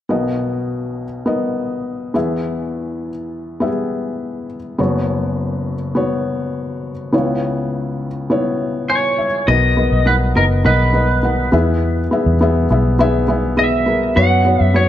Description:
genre	pop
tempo	102 BPM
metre	4/4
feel	straight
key	B major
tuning	A4 = 441 Hz
part	felt-muted upright piano	accompaniment	0.1-14.9 s	F#1 to G#5	-18 LUFS	left 2 dB	none
part	lightly driven lead guitar	melody	8.9-14.9 s	A#4 to F#5	-17 LUFS	right 2 dB	none
part	vintage muted fingered electric bass	bass	9.5-14.9 s	F#1 to F#2	-16 LUFS	equal	none
room	moderate concert hall reverb, RT60 1.9 s, small room ambience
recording	dark, warm production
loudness	-15 LUFS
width	side -12 dB against mid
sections	0.1-9.5 A section; 9.5-14.9 B section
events	felt piano fill 8.6-9.5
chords	0.1 Bmaj7; 2.1 E; 4.8 F#sus4; 7.1 C#m7; 9.5 Bmaj7; 11.5 E; 14.2 F#sus4

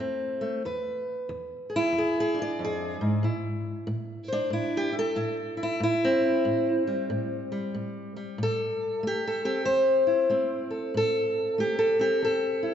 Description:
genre	acoustic country blues, solo or duo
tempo	93 BPM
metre	4/4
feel	swing 63% on 8ths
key	A minor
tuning	A4 = 445 Hz
part	fingerpicked steel-string acoustic guitar	solo	0.0-12.7 s	E2 to D5	-25 LUFS	equal	none
room	wet concert hall reverb, RT60 2.3 s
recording	recorded in a church or concert hall, nothing above 7.8 kHz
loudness	-25 LUFS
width	side -9 dB against mid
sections	0.0-8.4 A section; 8.4-12.7 A section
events	none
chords	0.0 Fmaj7; 0.6 E7b9; 3.2 Am7

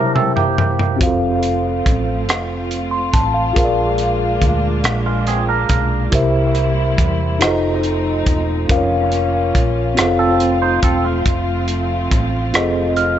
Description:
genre	slow gospel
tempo	47 BPM (dotted quarters)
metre	6/8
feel	straight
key	unclear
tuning	A4 = 440 Hz
part	clean electric guitar	second line	0.0-1.0, 5.1-6.1, 10.2-12.3 s	Ab3 to C5	-21 LUFS	right 6 dB	wide subtle chorus
part	mellow tine electric piano	accompaniment	0.0-13.2 s	Bb2 to F6	-18 LUFS	left 1 dB	medium stereo tremolo, analog delay
part	crisp fusion drum kit	drums	0.2-13.2 s	hi-hat, kick drum, rim click, toms	-18 LUFS	equal	none
part	warm studio string section	sustained chords	1.0-13.2 s	F3 to F4	-26 LUFS	equal	none
part	hollow-body short-scale fingered electric bass	bass	1.0-13.2 s	E1 to E2	-21 LUFS	equal	none
room	light reverb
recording	echo-heavy mix, nothing above 7.9 kHz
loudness	-14 LUFS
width	side -10 dB against mid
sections	0.0-13.2 A section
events	drum fill 0.0-1.0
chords	0.0 C7; 1.0 F; 3.6 Bb7; 6.1 C7; 7.4 F7; 8.7 Bbm/F; 10.0 F

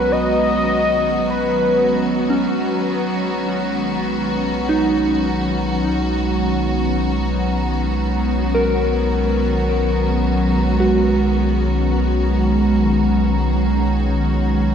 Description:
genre	ambient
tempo	free time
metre	none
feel	none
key	unclear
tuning	A4 = 440 Hz
part	warm velvety synth lead	melody	0.0-2.4 s	B4 to D#5	-19 LUFS	left 1 dB	chorus, ping-pong delay
part	glassy FM pad	sustained chords	0.0-14.7 s	D#3 to A#5	-20 LUFS	right 1 dB	ensemble chorus, built-in reverb
part	soft synth bell	arpeggios	0.0-14.7 s	C#4 to A#4	-24 LUFS	equal	chorus, ping-pong delay
part	deep rumbling drone	bass	0.0-14.7 s	B1	-22 LUFS	left 1 dB	built-in reverb
part	bowed-like drone	drone	0.0-14.7 s	F#3 to B3	-24 LUFS	equal	built-in reverb
part	clear chamber violin section	texture	0.0-14.7 s	F#4	-29 LUFS	right 1 dB	none
room	wet lush hall reverb, RT60 2.9 s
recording	cassette tape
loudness	-16 LUFS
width	side -8 dB against mid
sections	0.0-14.7 A section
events	fade-in on synth drone 0.0-14.7; fade-in on violin section 0.0-14.7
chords	0.0 F#add9/B

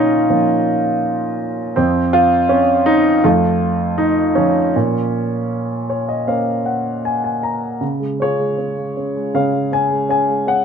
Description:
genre	classical, lyrical solo piano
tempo	79 BPM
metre	4/4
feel	rubato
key	Bb minor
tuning	A4 = 441 Hz
part	dark baby grand piano	solo	0.0-10.6 s	F2 to Bb5	-15 LUFS	equal	none
room	light reverb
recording	minimal, uncompressed stereo recording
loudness	-15 LUFS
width	side -7 dB against mid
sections	0.0-7.8 A section; 7.8-10.6 B section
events	grand piano fill 5.5-7.8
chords	0.0 Bbm; 1.8 N.C.; 3.2 F; 4.7 Bbmadd9; 7.8 Db

